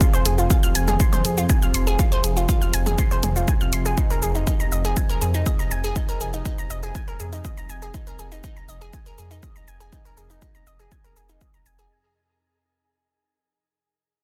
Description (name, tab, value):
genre	melodic techno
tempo	121 BPM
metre	4/4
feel	straight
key	unclear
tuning	A4 = 440 Hz
part	analog pluck	arpeggios	0.0-11.9 s	Eb4 to F6	-30 LUFS	equal	chorus, sidechain pumping, dub echo
part	analog drone	drone	0.0-12.0 s	F2 to C3	-34 LUFS	equal	chorus, sidechain pumping
part	electronic kick drum	drums	0.0-11.5 s	none	-24 LUFS	equal	none
part	techno drum kit	drums	0.0-11.9 s	hi-hat, shaker, toms	-31 LUFS	equal	sidechain pumping on perc, sidechain pumping on hats, sidechain pumping on toms
part	dark detuned saw bass	bass	0.3-11.9 s	F1 to F2	-28 LUFS	equal	sidechain pumping
room	little or no reverb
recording	dense, heavily limited modern master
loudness	-22 LUFS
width	mono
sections	0.0-11.9 A section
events	fade-out 0.0-11.9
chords	0.0 Fm; 4.0 Abadd9/F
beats	| 0.01 0.50 1.00 1.50 | 1.99 2.49 2.98 3.48 | 3.97 4.47 4.97 5.46 | 5.96 6.45 6.95 7.45 | 7.94 8.44 8.93 9.43 | 9.93 10.42 10.92 11.41